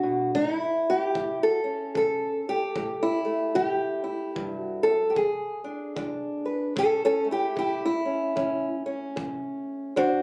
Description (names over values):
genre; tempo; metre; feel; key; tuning
acoustic country blues, solo or duo; 75 BPM; 4/4; swing 60% on 8ths; A mixolydian; A4 = 439 Hz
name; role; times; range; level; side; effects
fingerpicked old ladder-braced acoustic guitar; melody; 0.0-10.2 s; E2 to C5; -27 LUFS; equal; none
kick drum; drums; 0.3-10.2 s; none; -44 LUFS; equal; none
room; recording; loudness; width
moderate studio ambience, RT60 0.5 s; recorded on a phone in the room, club reverb; -27 LUFS; mono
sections
0.0-6.8 A section; 6.8-10.2 B section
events
steel-string acoustic guitar solo 6.8-10.2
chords
0.3 A7(no3); 5.2 E7; 6.8 A